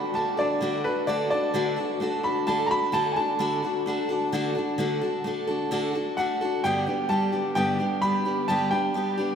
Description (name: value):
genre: country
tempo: 130 BPM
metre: 4/4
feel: straight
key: G major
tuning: A4 = 438 Hz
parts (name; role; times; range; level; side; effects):
- bright upright piano; melody; 0.0-9.3 s; B4 to B5; -27 LUFS; right 1 dB; none
- picked steel-string acoustic guitar; accompaniment; 0.0-9.3 s; G2 to A4; -26 LUFS; left 1 dB; none
room: wet cathedral reverb, RT60 5.7 s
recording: in a vast, echoing space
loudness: -23 LUFS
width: side -7 dB against mid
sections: 0.0-4.8 A section; 4.8-6.6 B section; 6.6-9.3 C section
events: upright piano solo 0.0-4.8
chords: 0.0 D; 6.6 G